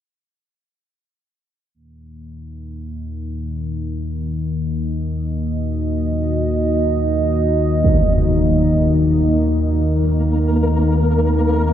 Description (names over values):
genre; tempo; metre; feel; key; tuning
dark ambient drone; free time; none; none; Eb minor; A4 = 441 Hz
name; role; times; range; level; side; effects
dark analog pad; sustained chords; 2.9-11.7 s; Bb3 to Eb5; -21 LUFS; right 1 dB; chorus, phaser
deep rumbling drone; drone; 2.2-11.7 s; Eb2 to Eb3; -19 LUFS; left 1 dB; built-in reverb
impact; percussion; 7.8-8.0 s; none; -22 LUFS; right 1 dB; low-pass filter on sfx
flickering grainy texture; texture; 10.2-11.7 s; Bb3 to Bb4; -21 LUFS; left 1 dB; built-in reverb
room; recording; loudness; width
wet huge ambient reverb, RT60 8.7 s; none; -16 LUFS; side -10 dB against mid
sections
1.7-11.7 A section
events
fade-out on analog synth pad 1.7-11.7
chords
1.7 Ebm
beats
free time